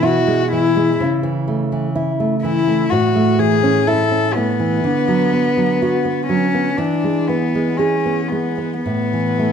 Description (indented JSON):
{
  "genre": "romantic duo for cello and classical guitar",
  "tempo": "62 BPM",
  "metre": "4/4",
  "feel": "rubato",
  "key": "A major",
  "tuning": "A4 = 438 Hz",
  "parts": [
    { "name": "warm cello", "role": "melody", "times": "0.0-9.5 s", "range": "B3 to A4", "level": "-18 LUFS", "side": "left 5 dB", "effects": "none" },
    { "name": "nylon-string guitar", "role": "accompaniment", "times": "0.0-9.5 s", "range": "A2 to G#4", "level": "-17 LUFS", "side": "right 2 dB", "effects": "none" }
  ],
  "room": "moderate recital hall reverb, RT60 1.4 s",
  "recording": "minimal, uncompressed stereo recording",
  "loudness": "-15 LUFS",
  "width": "side -7 dB against mid",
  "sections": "0.0-9.5 A section",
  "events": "none",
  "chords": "0.0 E/B; 1.0 A/C#; 2.9 A; 4.8 Bm/D; 6.8 E; 8.8 A5"
}